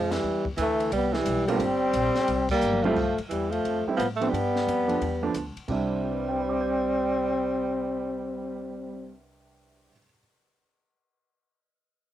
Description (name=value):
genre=jazz, small-group swing and bop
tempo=176 BPM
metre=4/4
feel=swing 64% on 8ths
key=C major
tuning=A4 = 439 Hz
part: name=mellow trombone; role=melody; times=0.0-9.2 s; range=G3 to C4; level=-27 LUFS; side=left 3 dB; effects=cassette tape
part: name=warm tenor saxophone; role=second line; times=0.0-9.2 s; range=E3 to A3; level=-29 LUFS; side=right 6 dB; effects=cassette tape
part: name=upright bass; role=bass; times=0.0-9.9 s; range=G1 to A2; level=-34 LUFS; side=left 2 dB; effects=none
part: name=compact cocktail drum kit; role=drums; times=0.1-8.3 s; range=crash cymbal, cymbal swell, hi-hat, kick drum, ride cymbal, snare drum, toms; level=-37 LUFS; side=left 2 dB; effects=none
part: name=warm baby grand piano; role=accompaniment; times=1.5-10.2 s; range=C3 to G6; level=-30 LUFS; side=right 5 dB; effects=cassette tape
room=light reverb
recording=home recording on cassette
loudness=-24 LUFS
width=side -12 dB against mid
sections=0.0-3.0 A section; 3.0-5.7 B section; 5.7-8.4 C section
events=band accent 0.1, 2.5; drum fill 2.6-3.0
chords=0.2 Cmaj7; 1.6 Gm; 2.3 C7; 3.0 Fmaj7; 4.3 G7; 5.7 Cmaj9